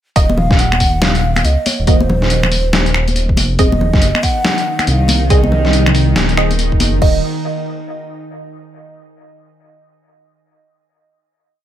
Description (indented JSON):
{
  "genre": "deep dubstep",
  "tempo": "140 BPM",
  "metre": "4/4",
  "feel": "swing 62% on 16ths, half-time",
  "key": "Eb dorian",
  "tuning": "A4 = 440 Hz",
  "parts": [
    { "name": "breathy mellow low ney", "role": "melody", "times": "0.2-6.2 s", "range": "C5 to Gb5", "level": "-21 LUFS", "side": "right 1 dB", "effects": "dub echo" },
    { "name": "filtered dub chord stab", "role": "stabs", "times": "0.2-7.2 s", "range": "Bb3 to Eb5", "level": "-21 LUFS", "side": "right 3 dB", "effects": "phaser, wide subtle chorus, dub echo" },
    { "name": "dark detuned saw bass", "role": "bass", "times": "0.2-7.2 s", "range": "Eb1 to Db2", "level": "-15 LUFS", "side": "equal", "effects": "none" },
    { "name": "deep house drum kit", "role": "drums", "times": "0.2-7.1 s", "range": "crash cymbal, kick drum", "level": "-14 LUFS", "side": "equal", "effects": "none" },
    { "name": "trip hop sampler-style drum kit", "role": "drums", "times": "0.2-6.9 s", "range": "finger snaps, hi-hat, snare drum", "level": "-17 LUFS", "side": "left 1 dB", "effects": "none" },
    { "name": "congas", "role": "percussion", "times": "0.3-6.9 s", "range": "none", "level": "-22 LUFS", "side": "left 2 dB", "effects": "none" },
    { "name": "bowed-like drone", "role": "sustained chords", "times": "4.2-7.1 s", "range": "Eb3 to Eb4", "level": "-22 LUFS", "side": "right 2 dB", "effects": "built-in reverb" }
  ],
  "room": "light reverb, digital ambience",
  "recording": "none",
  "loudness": "-11 LUFS",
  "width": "side -11 dB against mid",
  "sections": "0.2-7.0 drop; 7.0-8.7 final chord",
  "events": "drop 0.2-7.0",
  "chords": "0.2 N.C.; 3.6 Ab/Eb (rootless); 7.0 Ebm",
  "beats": "| 0.16 0.59 1.02 1.45 | 1.87 2.30 2.73 3.16 | 3.59 4.02 4.45 4.87 | 5.30 5.73 6.16 6.59 | 7.02"
}